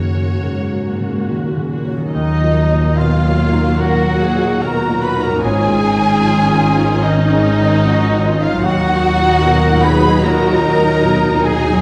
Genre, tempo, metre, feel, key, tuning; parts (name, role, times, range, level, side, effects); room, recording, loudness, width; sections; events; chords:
cinematic; 68-76 BPM; 4/4; rubato; Eb minor; A4 = 440 Hz
warm studio violin section; melody; 0.0-11.8 s; Eb4 to Db5; -26 LUFS; equal
rich studio viola section; accompaniment; 0.0-11.8 s; Gb3 to Gb4; -24 LUFS; equal
warm grand piano; accompaniment; 0.0-11.8 s; Eb2 to F4; -21 LUFS; equal
concert harp; arpeggios; 0.0-11.8 s; Gb2 to Db5; -25 LUFS; equal
dark studio cello section; bass; 0.0-11.8 s; Gb2 to Bb4; -24 LUFS; equal
large flute ensemble; second line; 2.1-11.8 s; Eb5 to Cb6; -27 LUFS; equal
warm cor anglais; second line; 2.1-11.8 s; Eb4 to Cb5; -26 LUFS; equal
warm studio violin section; second line; 2.1-11.8 s; Eb5 to Cb6; -23 LUFS; equal
warm French horn section; sustained chords; 2.1-11.8 s; Eb3 to Eb4; -25 LUFS; equal
rich studio double bass section; bass; 2.1-11.8 s; Ab1 to Eb2; -22 LUFS; equal
wet recital hall reverb, RT60 1.7 s; heard from further back in the room; -15 LUFS; mono
0.0-2.1 A section; 2.1-11.8 A section
0.0 Gb; 2.1 Ebmadd9; 5.4 Absus4; 8.7 Ebmadd9